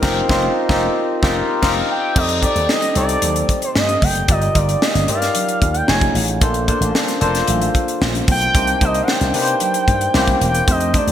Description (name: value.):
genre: polished 1980s jazz-funk pop.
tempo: 113 BPM.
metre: 4/4.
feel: straight.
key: unclear.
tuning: A4 = 440 Hz.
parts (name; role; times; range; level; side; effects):
barky tine electric piano; accompaniment; 0.0-11.1 s; A3 to D5; -20 LUFS; left 2 dB; overdrive, lush chorus.
slap bass with an envelope filter; bass; 0.0-11.1 s; E1 to C3; -21 LUFS; equal; none.
crisp fusion drum kit; drums; 0.0-11.1 s; crash cymbal, hi-hat, kick drum, snare drum; -19 LUFS; equal; gated reverb.
expressive portamento lead; melody; 1.9-11.1 s; C5 to G#5; -20 LUFS; right 1 dB; chorus.
congas; percussion; 2.2-10.8 s; none; -32 LUFS; right 5 dB; none.
room: moderate lush hall reverb, RT60 1.7 s, studio reverb.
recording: bright 1980s-style digital production.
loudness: -14 LUFS.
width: side -10 dB against mid.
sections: 0.0-2.2 A section; 2.2-11.1 B section.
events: band accent 0.0-2.2.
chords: 0.0 F9sus4; 2.2 F13; 4.3 Ebmaj9/G; 5.9 F7alt; 6.4 Bbmaj9; 8.5 Cm7; 10.1 C7b9.